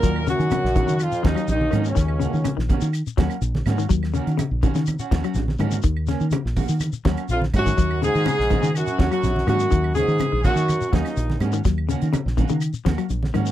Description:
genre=afrobeat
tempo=124 BPM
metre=4/4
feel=straight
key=Eb minor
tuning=A4 = 440 Hz
part: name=warm horn section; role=melody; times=0.0-2.6, 7.3-11.4 s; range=Db4 to Bb4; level=-23 LUFS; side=equal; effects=none
part: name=bright trombone section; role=second line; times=0.0-2.5, 7.3-11.4 s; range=Db2 to Bb2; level=-30 LUFS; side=right 4 dB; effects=none
part: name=semi-hollow electric guitar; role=arpeggios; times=0.0-13.5 s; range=Db3 to Gb3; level=-27 LUFS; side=left 10 dB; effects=none
part: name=electric guitar at the edge of break-up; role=stabs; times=0.0-13.5 s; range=Bb3 to Gb4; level=-30 LUFS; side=right 7 dB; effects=lush chorus
part: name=fingered electric bass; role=bass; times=0.0-13.5 s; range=Bb1 to Eb3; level=-23 LUFS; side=equal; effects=none
part: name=damped 70s drum kit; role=drums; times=0.0-13.5 s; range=hi-hat, kick drum, snare drum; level=-23 LUFS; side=equal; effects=none
part: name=shekere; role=percussion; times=0.0-13.5 s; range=none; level=-34 LUFS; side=left 5 dB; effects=none
part: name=claves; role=percussion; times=0.2-13.5 s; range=none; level=-40 LUFS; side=right 14 dB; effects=none
part: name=congas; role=percussion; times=0.5-13.5 s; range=none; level=-27 LUFS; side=right 3 dB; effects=none
room=little or no reverb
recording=dry, close 1970s-style studio recording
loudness=-19 LUFS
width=side -12 dB against mid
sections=0.0-13.5 A section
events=none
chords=0.0 Ebm7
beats=| 0.03 0.51 1.00 1.48 | 1.97 2.45 2.93 3.42 | 3.90 4.39 4.87 5.36 | 5.84 6.33 6.81 7.30 | 7.78 8.27 8.75 9.23 | 9.72 10.20 10.69 11.17 | 11.65 12.14 12.62 13.10

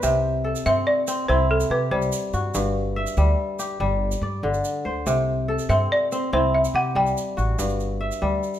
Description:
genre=west african traditional, West African string and xylophone music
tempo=95 BPM (dotted quarters)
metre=12/8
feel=straight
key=C lydian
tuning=A4 = 440 Hz
part: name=kora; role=arpeggios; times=0.0-8.6 s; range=G2 to E5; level=-24 LUFS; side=left 1 dB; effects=none
part: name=upright bass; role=bass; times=0.0-8.4 s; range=G1 to C3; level=-25 LUFS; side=equal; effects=none
part: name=tube shaker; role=percussion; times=0.0-8.6 s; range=none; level=-36 LUFS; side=right 8 dB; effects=none
part: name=balafon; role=melody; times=0.7-7.4 s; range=A4 to G5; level=-22 LUFS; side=equal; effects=none
room=light reverb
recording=minimal, uncompressed stereo recording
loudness=-20 LUFS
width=side -11 dB against mid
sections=0.0-8.6 A section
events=none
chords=0.0 C; 2.5 G5; 5.1 C; 7.6 G5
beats=| 0.02 0.65 1.28 1.91 | 2.54 3.17 3.80 4.43 | 5.06 5.70 6.33 6.96 | 7.59 8.22

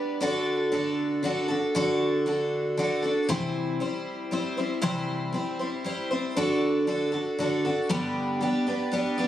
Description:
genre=rock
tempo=117 BPM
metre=3/4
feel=straight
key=unclear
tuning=A4 = 439 Hz
part: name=picked twelve-string acoustic guitar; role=solo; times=0.0-9.3 s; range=G2 to C5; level=-25 LUFS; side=equal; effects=none
room=light reverb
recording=recorded on a phone in the room, studio ambience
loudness=-25 LUFS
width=side -12 dB against mid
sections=0.0-6.4 A section; 6.4-9.3 B section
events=none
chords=0.2 D; 3.3 C; 6.4 D; 7.9 G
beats=| 0.21 0.72 1.24 | 1.75 2.26 2.77 | 3.29 3.80 4.31 | 4.83 5.34 5.85 | 6.37 6.88 7.39 | 7.90 8.41 8.93

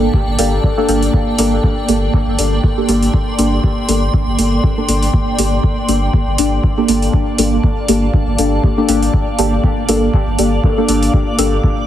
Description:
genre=dub techno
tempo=120 BPM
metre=4/4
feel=swing 56% on 16ths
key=G minor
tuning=A4 = 440 Hz
part: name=granular cloud pad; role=sustained chords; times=0.0-11.9 s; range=Bb3 to D6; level=-20 LUFS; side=equal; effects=built-in reverb, sidechain pumping
part: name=deep mellow chord stab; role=stabs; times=0.0-11.6 s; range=Bb3 to A4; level=-17 LUFS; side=equal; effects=chorus, phaser, dub echo
part: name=pure sine sub bass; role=bass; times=0.0-11.6 s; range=G1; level=-18 LUFS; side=equal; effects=sidechain pumping
part: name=electronic kick drum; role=drums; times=0.1-11.7 s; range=none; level=-15 LUFS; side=equal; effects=studio reverb
part: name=electronic hi-hat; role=drums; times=0.4-11.5 s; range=none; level=-21 LUFS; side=equal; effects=overdrive, studio reverb
room=light reverb, digital ambience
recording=heavily compressed radio sound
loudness=-12 LUFS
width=side -11 dB against mid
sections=0.0-11.9 A section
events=none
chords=0.0 Gmadd9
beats=| 0.14 0.64 1.14 1.64 | 2.13 2.63 3.13 3.63 | 4.13 4.63 5.13 5.63 | 6.13 6.63 7.13 7.63 | 8.13 8.63 9.13 9.63 | 10.13 10.63 11.13 11.63

